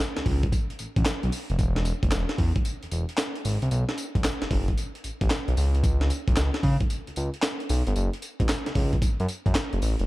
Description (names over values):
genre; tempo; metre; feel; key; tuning
R&B, new jack swing; 113 BPM; 4/4; swing 65% on 16ths; F# minor; A4 = 441 Hz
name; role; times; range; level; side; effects
breakbeat sampler-style drum kit; drums; 0.0-10.1 s; handclaps, hi-hat, kick drum, snare drum, tambourine; -26 LUFS; equal; overdrive
smooth synth bass; bass; 0.2-10.1 s; E1 to C#3; -25 LUFS; equal; none
room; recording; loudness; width
little or no reverb; dark, warm production; -23 LUFS; side -19 dB against mid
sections
0.0-10.1 A section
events
none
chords
none